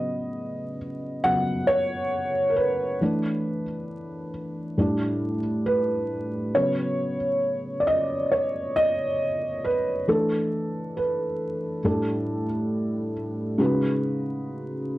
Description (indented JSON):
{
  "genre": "hip hop",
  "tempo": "68 BPM",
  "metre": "4/4",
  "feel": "swing 58% on 16ths",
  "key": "unclear",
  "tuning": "A4 = 440 Hz",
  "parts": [
    { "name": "felt-muted upright piano", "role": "solo", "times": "0.0-15.0 s", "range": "A2 to F#5", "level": "-23 LUFS", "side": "equal", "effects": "low-pass filter" }
  ],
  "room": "moderate studio reverb, RT60 0.6 s",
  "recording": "dark, warm production, vinyl crackle, nothing above 10.4 kHz",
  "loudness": "-23 LUFS",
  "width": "side -16 dB against mid",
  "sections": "0.0-13.6 A section; 13.6-15.0 B section",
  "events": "felt piano solo 0.0-13.6",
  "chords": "0.0 C#9sus4; 3.0 E7sus4; 4.8 A9sus4; 6.5 C#9sus4; 10.1 E7sus4; 11.8 A7sus4; 13.6 C#9sus4"
}